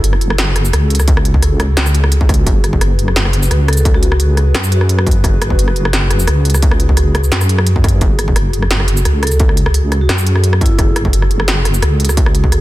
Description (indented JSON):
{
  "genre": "half-time drum and bass",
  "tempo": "173 BPM",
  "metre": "4/4",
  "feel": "half-time",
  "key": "F# minor",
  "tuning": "A4 = 443 Hz",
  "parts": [
    { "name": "dark analog pad", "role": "sustained chords", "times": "0.0-12.6 s", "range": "F#4 to B4", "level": "-24 LUFS", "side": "equal", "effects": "chorus, vintage 12-bit sampler grit, sidechain pumping" },
    { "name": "deep soft wobble bass", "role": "bass", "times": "0.0-12.6 s", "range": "F#1 to F#2", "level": "-13 LUFS", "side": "equal", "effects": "chorus" },
    { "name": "industrial drum kit", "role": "drums", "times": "0.0-12.6 s", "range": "hi-hat, rim click, shaker, snare drum", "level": "-18 LUFS", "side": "equal", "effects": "studio reverb" },
    { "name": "electronic kick drum", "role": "drums", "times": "1.1-12.5 s", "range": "none", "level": "-13 LUFS", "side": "equal", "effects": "distortion, studio reverb" },
    { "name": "vibraphone with medium hard mallets", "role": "melody", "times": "3.7-5.1, 9.2-11.0 s", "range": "E4 to A4", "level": "-26 LUFS", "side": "equal", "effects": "dub echo" }
  ],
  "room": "digital ambience",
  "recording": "dense, heavily limited modern master",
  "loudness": "-10 LUFS",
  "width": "side -16 dB against mid",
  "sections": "0.0-12.6 A section",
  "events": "none",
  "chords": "0.0 F#madd9"
}